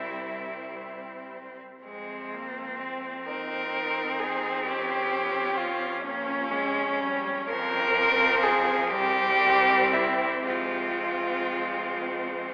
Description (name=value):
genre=classical, lyrical piece for cello ensemble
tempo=42 BPM (dotted quarters)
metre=6/8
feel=uneven beats, rubato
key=F minor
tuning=A4 = 440 Hz
part: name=rich cello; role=melody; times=0.0-12.5 s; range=Db4 to Bb4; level=-28 LUFS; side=equal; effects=none
part: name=rich cello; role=second line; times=0.0-12.5 s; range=C4 to Eb4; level=-34 LUFS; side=equal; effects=none
part: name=rich cello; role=accompaniment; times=0.0-12.5 s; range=F3 to C4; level=-35 LUFS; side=equal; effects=none
part: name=rich cello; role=bass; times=0.0-12.5 s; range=C2 to F2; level=-41 LUFS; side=equal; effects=none
room=wet cathedral reverb, RT60 5.2 s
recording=in a vast, echoing space, telephone sound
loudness=-26 LUFS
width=mono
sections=0.0-12.5 A section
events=none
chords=0.0 C; 1.8 Fm; 4.7 Bbm/F; 7.5 F5; 8.9 C5; 10.5 Fm